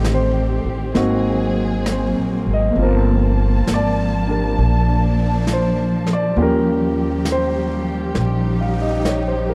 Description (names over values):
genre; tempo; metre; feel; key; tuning
jazz ballad; 67 BPM; 4/4; swing 66% on 8ths; G minor; A4 = 440 Hz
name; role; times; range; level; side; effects
warm concert grand piano; accompaniment; 0.0-9.5 s; A3 to F5; -24 LUFS; equal; none
warm symphonic string section; sustained chords; 0.0-9.5 s; Eb3 to A5; -24 LUFS; equal; none
upright bass; bass; 0.0-9.5 s; G1 to Eb2; -22 LUFS; equal; none
jazz brush drum kit; drums; 0.0-9.5 s; brushed snare drum, hi-hat, snare drum; -30 LUFS; equal; none
room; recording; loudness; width
little or no reverb; dry, close 1970s-style studio recording; -18 LUFS; mono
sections
0.0-9.5 A section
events
none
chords
0.0 Am7b5; 0.9 Ab9; 2.8 Gm11; 6.4 Eb9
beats
0.04 0.94 1.85 | 2.76 3.67 4.57 5.47 | 6.37 7.26 8.16 9.06